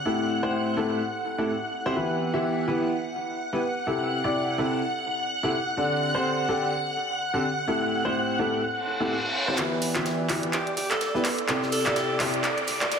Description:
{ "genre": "piano house", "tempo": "126 BPM", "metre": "4/4", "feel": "swing 57% on 16ths", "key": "E minor", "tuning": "A4 = 439 Hz", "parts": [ { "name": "string machine, violins", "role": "sustained chords", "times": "0.0-13.0 s", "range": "D5 to F#6", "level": "-30 LUFS", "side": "right 1 dB", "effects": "ensemble chorus" }, { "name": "clear upright piano", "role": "riff", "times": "0.1-12.4 s", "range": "A2 to E5", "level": "-26 LUFS", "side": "left 1 dB", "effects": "lush chorus, low-pass filter, tape echo" }, { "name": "reverse cymbal and riser", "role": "sound effects", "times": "8.8-13.0 s", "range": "none", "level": "-33 LUFS", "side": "equal", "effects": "none" }, { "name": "house drum kit", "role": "drums", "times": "9.6-13.0 s", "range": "handclaps, hi-hat", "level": "-27 LUFS", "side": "right 1 dB", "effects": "overdrive" }, { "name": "modern studio drum kit", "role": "drums", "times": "9.6-13.0 s", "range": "ride cymbal, snare drum", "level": "-39 LUFS", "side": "right 2 dB", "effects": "none" }, { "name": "bright alto saxophone", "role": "melody", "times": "10.5-12.2 s", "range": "G4 to A4", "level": "-30 LUFS", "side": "equal", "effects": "low-pass filter, tape echo" } ], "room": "wet plate reverb, RT60 1.9 s, studio reverb", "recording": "dreamy mix soaked in reverb", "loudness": "-24 LUFS", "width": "side -6 dB against mid", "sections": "0.0-9.6 A section; 9.6-13.0 B section", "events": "reverse cymbal 8.8-9.6; build-up 9.6-13.0; drum fill 9.6-13.0; filter sweep on upright piano 9.6-13.0; filter sweep on string machine 9.6-13.0", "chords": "0.1 Am7; 2.0 Em; 3.6 C6; 5.8 D7sus4; 7.7 Am7; 9.6 Em; 11.2 C6" }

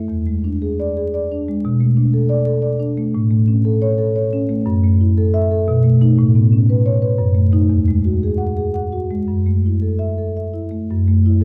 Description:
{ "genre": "classical, contemporary piece for solo marimba", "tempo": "109-120 BPM", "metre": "3/4", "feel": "rubato", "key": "F# minor", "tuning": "A4 = 439 Hz", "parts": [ { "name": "marimba with soft mallets", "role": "solo", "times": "0.0-11.4 s", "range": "E2 to F#5", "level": "-17 LUFS", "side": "equal", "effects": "none" } ], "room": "wet recital hall reverb, RT60 1.4 s", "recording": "dark, warm production, vinyl crackle", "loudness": "-17 LUFS", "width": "mono", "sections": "0.0-10.9 A section", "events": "none", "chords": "0.1 E7; 1.6 Bm7; 3.2 A; 4.7 F#m7; 5.7 B7; 6.2 Aadd9; 7.2 F#m6; 7.7 Eadd9; 9.3 F#m7" }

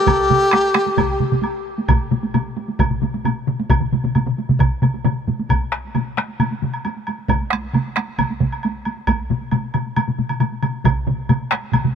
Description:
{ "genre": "japanese traditional, taiko drum ensemble", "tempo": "134 BPM", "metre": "4/4", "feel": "straight", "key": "unclear", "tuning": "A4 = 440 Hz", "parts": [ { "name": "bright reedy large dizi", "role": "melody", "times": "0.0-1.3 s", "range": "G4", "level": "-18 LUFS", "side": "left 2 dB", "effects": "tape echo" }, { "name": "taiko ensemble", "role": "percussion", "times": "0.1-11.9 s", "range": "none", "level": "-25 LUFS", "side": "right 4 dB", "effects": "none" }, { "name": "taiko ensemble", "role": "percussion", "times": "0.1-11.9 s", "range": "none", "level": "-20 LUFS", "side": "right 3 dB", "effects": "none" }, { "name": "taiko ensemble", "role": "percussion", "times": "0.1-11.8 s", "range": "none", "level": "-23 LUFS", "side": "equal", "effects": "none" }, { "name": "woodblock", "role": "percussion", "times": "0.1-11.8 s", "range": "none", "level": "-27 LUFS", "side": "right 2 dB", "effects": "none" }, { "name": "taiko ensemble", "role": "percussion", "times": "1.9-11.9 s", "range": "none", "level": "-21 LUFS", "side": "left 4 dB", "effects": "none" } ], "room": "light reverb", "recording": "none", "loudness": "-17 LUFS", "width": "side -7 dB against mid", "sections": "0.0-5.5 A section; 5.5-11.9 B section", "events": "speeding up 0.0-11.9", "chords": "none" }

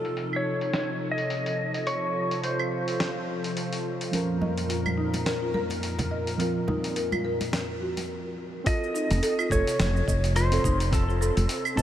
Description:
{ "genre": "organic downtempo", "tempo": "106 BPM", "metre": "4/4", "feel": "swing 57% on 16ths", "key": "unclear", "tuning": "A4 = 441 Hz", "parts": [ { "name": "clean lap steel guitar", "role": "melody", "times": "0.0-3.8, 8.7-11.8 s", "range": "A4 to Eb5", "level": "-30 LUFS", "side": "equal", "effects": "tape echo" }, { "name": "muted felt-like synth keys", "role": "accompaniment", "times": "0.0-11.8 s", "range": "C3 to Bb4", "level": "-33 LUFS", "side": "right 3 dB", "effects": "chorus, sidechain pumping, analog delay" }, { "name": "warm analog pad", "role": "sustained chords", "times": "0.0-8.1 s", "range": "F2 to Bb4", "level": "-31 LUFS", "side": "equal", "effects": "chorus, sidechain pumping" }, { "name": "dusty soul sampler-style drum kit", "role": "drums", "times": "0.0-11.8 s", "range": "cabasa, claves, hi-hat, snare drum", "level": "-33 LUFS", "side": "equal", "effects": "low-pass filter on perc, low-pass filter on snare, low-pass filter on hats, low-pass filter on room" }, { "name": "congas", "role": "percussion", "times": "4.1-8.1 s", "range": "none", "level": "-36 LUFS", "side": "right 1 dB", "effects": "none" }, { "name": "buzzing marimba with medium mallets", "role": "arpeggios", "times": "4.4-11.8 s", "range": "Eb4 to Eb5", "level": "-32 LUFS", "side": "left 1 dB", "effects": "analog delay" }, { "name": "electronic kick drum", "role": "drums", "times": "8.7-11.8 s", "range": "none", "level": "-27 LUFS", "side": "equal", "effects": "none" }, { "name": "woody fretless electric bass", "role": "bass", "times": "9.1-11.8 s", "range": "F1", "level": "-25 LUFS", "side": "equal", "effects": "sidechain pumping" } ], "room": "moderate huge ambient reverb, RT60 7.4 s", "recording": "dreamy mix soaked in reverb", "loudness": "-24 LUFS", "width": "side -11 dB against mid", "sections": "0.0-8.7 A section; 8.7-11.8 B section", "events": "break 8.1-8.7", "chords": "0.0 F7; 4.1 Bbm/F; 6.4 N.C.; 8.7 F7" }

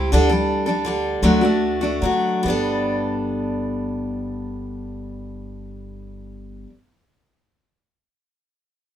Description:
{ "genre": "acoustic folk duo or small band", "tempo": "46-58 BPM (dotted quarters)", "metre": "6/8", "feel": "straight", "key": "G major", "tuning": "A4 = 440 Hz", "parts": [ { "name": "picked steel-string acoustic guitar", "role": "accompaniment", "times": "0.0-6.7 s", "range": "D3 to A4", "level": "-20 LUFS", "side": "equal", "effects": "none" }, { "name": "upright bass", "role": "bass", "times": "0.0-6.6 s", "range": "G1 to D3", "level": "-28 LUFS", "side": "equal", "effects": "none" } ], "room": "light reverb", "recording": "minimal, uncompressed stereo recording", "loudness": "-19 LUFS", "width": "side -10 dB against mid", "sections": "0.0-2.4 A section; 2.4-7.7 B section", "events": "slowing down 0.0-2.4", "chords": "0.1 Dsus4; 1.2 D; 2.4 Gadd9" }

